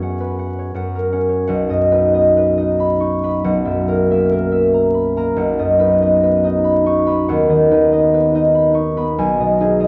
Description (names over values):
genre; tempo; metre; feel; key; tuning
classical, solo harp piece; 93 BPM; 3/4; uneven beats, rubato; B major; A4 = 440 Hz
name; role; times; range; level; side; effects
concert harp; solo; 0.0-9.9 s; B1 to C#6; -16 LUFS; equal; none
room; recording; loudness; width
wet recital hall reverb, RT60 1.5 s; dark, warm production, vinyl crackle, nothing above 7.7 kHz; -16 LUFS; mono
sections
0.0-1.5 A section; 1.5-9.9 B section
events
none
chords
0.0 F#sus4; 0.8 F#; 1.5 B; 3.4 F#7/B; 5.4 B; 7.3 B/D#; 9.2 G#m/B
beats
0.03 0.76 | 1.46 2.12 2.77 | 3.43 4.09 4.74 | 5.38 6.03 6.65 | 7.29 7.92 8.54 | 9.16 9.79